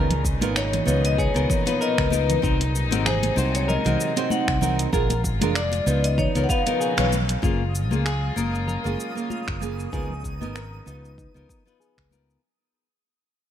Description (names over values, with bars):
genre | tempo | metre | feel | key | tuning
sunset chillout | 96 BPM | 4/4 | swing 56% on 16ths | unclear | A4 = 442 Hz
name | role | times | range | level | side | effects
nylon-string guitar | accompaniment | 0.0-12.4 s | A#3 to C#5 | -27 LUFS | moving between left 7 dB and right 10 dB | auto-pan, tape echo
rich chamber string section | sustained chords | 0.0-12.4 s | A#2 to E#4 | -32 LUFS | left 2 dB | low-pass filter
semi-hollow electric guitar | arpeggios | 0.0-12.1 s | D#4 to D5 | -33 LUFS | right 1 dB | low-pass filter, tape echo
fretless electric bass | bass | 0.0-12.4 s | E#1 to C#2 | -25 LUFS | equal | none
smooth R&B drum kit | drums | 0.1-12.4 s | cabasa, congas, finger snaps, hi-hat | -28 LUFS | right 3 dB | none
congas | percussion | 0.1-12.3 s | none | -31 LUFS | left 4 dB | none
electronic kick drum | drums | 0.2-12.1 s | none | -27 LUFS | equal | none
vibraphone with medium hard mallets | melody | 0.6-7.1 s | B#4 to F#5 | -28 LUFS | left 1 dB | tape echo
twinkling granular texture | texture | 7.7-12.4 s | D#6 | -42 LUFS | right 1 dB | built-in reverb
room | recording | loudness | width
light reverb, small room ambience | none | -20 LUFS | side -10 dB against mid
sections
0.0-7.4 A section; 7.4-12.4 B section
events
kick drops out 6.8-7.4; band accent 7.0-7.3; fade-out 7.4-12.4; filter sweep on string section 7.4-12.4; filter sweep on clean electric guitar 7.4-12.4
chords
0.0 C#13; 2.4 G#9; 4.9 A#7; 6.2 C#13; 7.4 F#maj9; 9.9 C#13